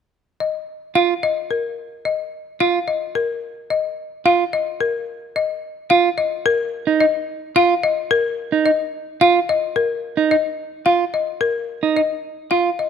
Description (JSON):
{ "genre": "classical, minimalist pattern music", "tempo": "109 BPM", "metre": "3/4", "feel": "straight", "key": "unclear", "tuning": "A4 = 440 Hz", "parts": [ { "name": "folk marimba with hard mallets", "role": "melody", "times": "0.4-12.9 s", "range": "Bb4 to F5", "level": "-20 LUFS", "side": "left 6 dB", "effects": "none" }, { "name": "clean electric guitar", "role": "arpeggios", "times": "1.0-12.7 s", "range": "Eb4 to F4", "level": "-18 LUFS", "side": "right 8 dB", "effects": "none" } ], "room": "light reverb", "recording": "close, detailed microphones", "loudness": "-17 LUFS", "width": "side -7 dB against mid", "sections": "0.1-12.9 A section", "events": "none", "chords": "0.1 Ebsus2", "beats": "| 0.13 0.68 1.23 | 1.78 2.33 2.88 | 3.43 3.98 4.53 | 5.08 5.63 6.18 | 6.73 7.28 7.83 | 8.38 8.94 9.49 | 10.04 10.59 11.14 | 11.69 12.24 12.79" }